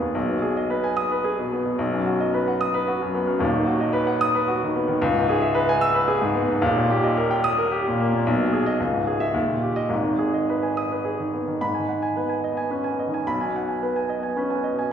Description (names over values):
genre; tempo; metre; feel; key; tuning
classical, virtuoso piano study; 110 BPM; 3/4; rubato; G# minor; A4 = 440 Hz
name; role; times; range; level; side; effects
clear baby grand piano; solo; 0.0-14.9 s; D#1 to E6; -20 LUFS; equal; none
room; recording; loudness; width
wet recital hall reverb, RT60 1.4 s; recorded in a church or concert hall; -20 LUFS; side -8 dB against mid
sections
0.0-11.6 A section; 11.6-14.9 A section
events
none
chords
0.2 G#m/B; 1.8 B; 3.4 B/D#; 5.0 C#m7; 6.6 D#; 8.3 G#m/B; 8.8 C#m; 9.3 D#; 9.9 G#m; 13.3 G#m/B